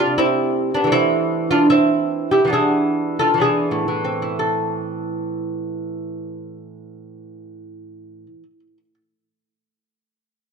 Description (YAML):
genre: classical, baroque-style dance for lute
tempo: 60-82 BPM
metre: 4/4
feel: rubato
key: A minor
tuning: A4 = 440 Hz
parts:
  - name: lute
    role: solo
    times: 0.0-8.9 s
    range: A2 to A4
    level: -18 LUFS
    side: right 1 dB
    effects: slapback echo
room: moderate recital hall reverb, RT60 1.6 s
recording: close, detailed microphones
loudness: -17 LUFS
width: side -6 dB against mid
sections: 0.0-4.4 A section; 4.4-8.3 B section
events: slowing down 0.0-4.4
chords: 0.0 Am/C; 0.9 Am/E; 2.5 E7; 4.4 Am